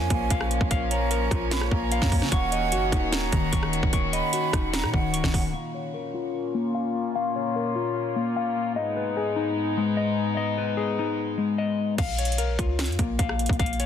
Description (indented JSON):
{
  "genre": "hip hop, trap",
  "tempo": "149 BPM",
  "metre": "4/4",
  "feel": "half-time",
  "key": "Bb phrygian",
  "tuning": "A4 = 442 Hz",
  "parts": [
    { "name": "breathy concert flute", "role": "second line", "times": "0.0-5.5 s", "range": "Gb5 to Cb6", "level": "-32 LUFS", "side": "right 6 dB", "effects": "digital delay" },
    { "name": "warm chamber string section", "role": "sustained chords", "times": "0.0-12.0 s", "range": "Ab2 to Gb4", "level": "-30 LUFS", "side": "right 2 dB", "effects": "low-pass filter" },
    { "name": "mellow electric guitar", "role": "arpeggios", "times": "0.0-13.9 s", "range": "Eb3 to Db6", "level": "-27 LUFS", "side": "left 6 dB", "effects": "low-pass filter, digital delay" },
    { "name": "clean 808-style bass", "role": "bass", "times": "0.0-5.5, 12.0-13.9 s", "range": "Db1 to Db3", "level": "-28 LUFS", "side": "right 1 dB", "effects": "none" },
    { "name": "trap drum kit", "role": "drums", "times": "0.1-5.4, 12.0-13.9 s", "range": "crash cymbal, hi-hat, kick drum, rim click, snare drum", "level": "-26 LUFS", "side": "right 1 dB", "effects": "overdrive" }
  ],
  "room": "little or no reverb",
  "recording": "dense, heavily limited modern master",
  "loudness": "-23 LUFS",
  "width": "side -9 dB against mid",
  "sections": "0.0-5.5 A section; 5.5-12.0 B section; 12.0-13.9 C section",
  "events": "filter sweep 5.5-12.0",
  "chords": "0.0 Bbm; 2.3 Ebm7; 5.5 Bbm; 8.8 Abm; 12.0 Bbm"
}